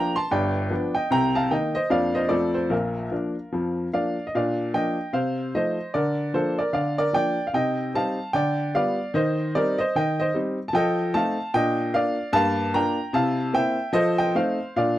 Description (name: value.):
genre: jazz, stride piano.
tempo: 150 BPM.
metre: 4/4.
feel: swing 61% on 8ths.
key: Bb major.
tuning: A4 = 440 Hz.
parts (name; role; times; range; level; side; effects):
bright upright piano; solo; 0.0-15.0 s; G1 to C6; -21 LUFS; equal; none.
room: little or no reverb.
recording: dry, close 1970s-style studio recording.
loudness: -21 LUFS.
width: side -14 dB against mid.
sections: 0.0-4.3 A section; 4.3-15.0 B section.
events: none.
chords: 0.3 G7; 1.1 Cm7; 1.9 Bb/F; 2.3 F; 2.7 Bb; 5.1 F7/C; 5.9 Bb/D; 7.5 Cm; 8.3 G7/D; 9.1 Cm/Eb; 10.7 F9; 11.5 Bb; 12.3 Gm7; 13.1 C7; 13.9 F7.